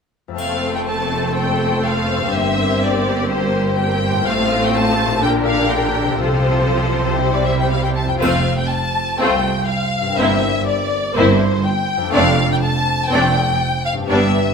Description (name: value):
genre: classical, dramatic, fast romantic movement for symphony orchestra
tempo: 122 BPM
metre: 4/4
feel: straight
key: F major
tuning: A4 = 439 Hz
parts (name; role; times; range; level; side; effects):
- concert harp; arpeggios; 0.3-14.5 s; F2 to C5; -24 LUFS; left 8 dB; none
- rich symphonic violin section; melody; 0.4-14.5 s; C5 to A5; -20 LUFS; left 2 dB; none
- rich symphonic violin section; second line; 0.4-14.3 s; D4 to D5; -23 LUFS; left 2 dB; none
- rich symphonic viola section; accompaniment; 0.4-14.3 s; D3 to D4; -22 LUFS; equal; none
- clear symphonic double bass section; bass; 0.4-14.5 s; F1 to C2; -24 LUFS; right 4 dB; none
- rich symphonic cello section; bass; 0.4-14.5 s; C2 to C3; -23 LUFS; right 4 dB; none
- triangle; percussion; 0.4-1.3, 8.2-9.2 s; none; -40 LUFS; left 2 dB; none
room: wet scoring stage reverb, RT60 1.6 s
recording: none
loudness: -15 LUFS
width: side -6 dB against mid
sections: 0.4-14.5 A section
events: none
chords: 0.4 F; 2.4 C7/G; 4.3 F/A; 5.2 Gm/Bb; 6.2 F/C; 7.2 C; 8.2 F; 10.2 C7/G; 12.1 Dm7/F